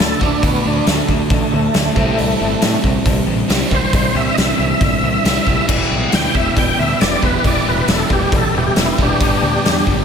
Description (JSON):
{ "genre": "classic rock", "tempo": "137 BPM", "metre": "4/4", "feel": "straight", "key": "E minor", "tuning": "A4 = 442 Hz", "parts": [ { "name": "overdriven tonewheel organ", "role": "melody", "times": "0.0-9.9 s", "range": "G#3 to G5", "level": "-19 LUFS", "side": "equal", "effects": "slow rotary speaker, chorus vibrato, digital delay" }, { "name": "crunchy overdriven guitar", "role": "riff", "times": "0.0-10.0 s", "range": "E2 to G4", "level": "-21 LUFS", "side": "right 8 dB", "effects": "slapback echo" }, { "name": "tight distorted guitar", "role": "riff", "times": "0.0-10.0 s", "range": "E2 to C4", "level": "-25 LUFS", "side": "left 11 dB", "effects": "distortion" }, { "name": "growling fingered electric bass", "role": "bass", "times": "0.0-10.0 s", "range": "E1 to A2", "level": "-22 LUFS", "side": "equal", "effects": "overdrive" }, { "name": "big rock drum kit", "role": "drums", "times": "0.0-10.0 s", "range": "crash cymbal, hi-hat, kick drum, snare drum", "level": "-17 LUFS", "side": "left 1 dB", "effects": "none" }, { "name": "cowbell", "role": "percussion", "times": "0.0-9.8 s", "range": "none", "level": "-32 LUFS", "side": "left 3 dB", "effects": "none" }, { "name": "raw garage guitar", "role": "riff", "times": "5.7-10.0 s", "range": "E3 to G4", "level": "-24 LUFS", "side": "left 2 dB", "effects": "overdrive, slapback echo" } ], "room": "moderate concert hall reverb, RT60 2.2 s", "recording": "big arena sound", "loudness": "-13 LUFS", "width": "side -7 dB against mid", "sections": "0.0-10.0 A section", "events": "tonewheel organ solo 0.0-10.0", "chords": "0.0 D; 2.0 C; 5.7 Em", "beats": "| 0.43 0.87 1.31 1.75 | 2.18 2.62 3.06 3.50 | 3.94 4.37 4.81 5.25 | 5.69 6.13 6.57 7.01 | 7.45 7.89 8.33 8.77 | 9.21 9.65" }